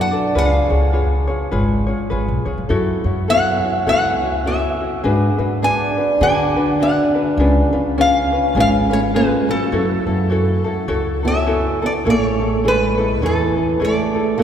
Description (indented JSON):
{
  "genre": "Hawaiian",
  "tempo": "103 BPM",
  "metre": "4/4",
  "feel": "swing 60% on 8ths",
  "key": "F# minor",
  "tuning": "A4 = 440 Hz",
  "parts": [
    { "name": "metal-body resonator slide guitar", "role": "melody", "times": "0.0-14.4 s", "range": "A4 to G#5", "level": "-20 LUFS", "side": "left 1 dB", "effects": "none" },
    { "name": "fingerpicked old ladder-braced acoustic guitar", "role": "second line", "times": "0.0-14.4 s", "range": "E3 to D4", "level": "-21 LUFS", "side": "right 2 dB", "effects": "none" },
    { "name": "ukulele", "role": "accompaniment", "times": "0.0-14.4 s", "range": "C#4 to D5", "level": "-21 LUFS", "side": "left 2 dB", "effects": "none" },
    { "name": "upright bass", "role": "bass", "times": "0.4-14.4 s", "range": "F#1 to D3", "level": "-20 LUFS", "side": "equal", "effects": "none" }
  ],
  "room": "wet cathedral reverb, RT60 4.6 s",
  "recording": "recorded in a church or concert hall",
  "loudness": "-15 LUFS",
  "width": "side -9 dB against mid",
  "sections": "0.0-12.1 A section; 12.1-14.4 B section",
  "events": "none",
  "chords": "0.4 C#7; 2.7 F#m7; 5.0 G#m7b5; 7.4 C#7; 9.7 F#m7; 12.1 Amaj7"
}